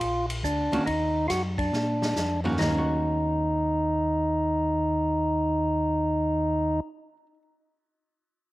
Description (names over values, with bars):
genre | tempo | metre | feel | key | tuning
soul jazz organ trio | 139 BPM | 4/4 | swing 66% on 8ths | Eb minor | A4 = 440 Hz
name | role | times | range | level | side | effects
percussive tonewheel organ | melody | 0.0-6.8 s | D4 to Gb4 | -25 LUFS | equal | overdrive, stopped rotary speaker, cassette tape
mellow tonewheel organ | bass | 0.0-6.8 s | Bb1 to Bb2 | -30 LUFS | equal | chorus vibrato, slow rotary speaker
swinging big-band drum kit | drums | 0.0-2.7 s | hi-hat, kick drum, ride cymbal, snare drum, toms | -32 LUFS | equal | cassette tape
archtop guitar, miked and amplified | accompaniment | 0.7-7.4 s | Eb3 to Gb4 | -31 LUFS | right 2 dB | cassette tape
room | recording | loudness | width
light reverb, small room reverb | home recording on cassette | -24 LUFS | side -17 dB against mid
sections
0.0-2.6 A section; 2.6-6.0 B section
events
drum fill 1.7-2.6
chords
0.0 Bb; 0.9 Ebm; 1.7 Bb; 2.6 Ebm7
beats
0.00 0.43 | 0.86 1.29 1.73 2.16 | 2.59 3.02 3.45 3.88 | 4.31 4.75 5.18 5.61